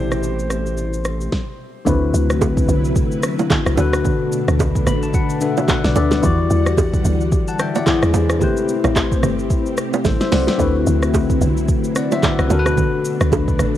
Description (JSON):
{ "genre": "amapiano", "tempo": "110 BPM", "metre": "4/4", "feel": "swing 58% on 16ths", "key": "A dorian", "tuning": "A4 = 440 Hz", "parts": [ { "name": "clear grand piano", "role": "melody", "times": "0.0-1.6 s", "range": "C5", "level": "-32 LUFS", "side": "right 1 dB", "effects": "tape echo" }, { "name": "bell-like tine electric piano", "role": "accompaniment", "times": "0.0-13.8 s", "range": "D3 to B5", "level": "-20 LUFS", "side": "left 4 dB", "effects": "phaser, cassette tape" }, { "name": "string machine, cellos", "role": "sustained chords", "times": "0.0-13.8 s", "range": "B2 to F#5", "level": "-26 LUFS", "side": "equal", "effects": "ensemble chorus, sidechain pumping, cassette tape" }, { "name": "saturated sub bass", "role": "bass", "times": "0.0-1.3 s", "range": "A1", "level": "-24 LUFS", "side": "right 1 dB", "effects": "none" }, { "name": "deep house drum kit", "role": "drums", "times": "0.1-13.8 s", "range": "handclaps, hi-hat, kick drum, rim click, shaker, snare drum", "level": "-20 LUFS", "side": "equal", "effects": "cassette tape" }, { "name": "woody log drum bass", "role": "bass", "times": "1.9-13.8 s", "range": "G1 to E2", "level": "-19 LUFS", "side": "right 1 dB", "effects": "none" }, { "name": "congas and bongos", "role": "percussion", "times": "1.9-13.7 s", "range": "none", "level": "-22 LUFS", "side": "right 6 dB", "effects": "none" } ], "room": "little or no reverb", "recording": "home recording on cassette", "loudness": "-15 LUFS", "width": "side -12 dB against mid", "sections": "0.0-1.9 A section; 1.9-13.8 B section", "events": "stop 1.3-1.9; drop 1.9-13.8; tine electric piano fill 4.6-6.2; drum fill 10.1-10.6", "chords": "0.0 Am9; 1.9 D13; 3.8 Bm7; 6.2 Em9; 7.9 E7b13; 8.4 Am9; 10.6 D13; 12.5 Bm7" }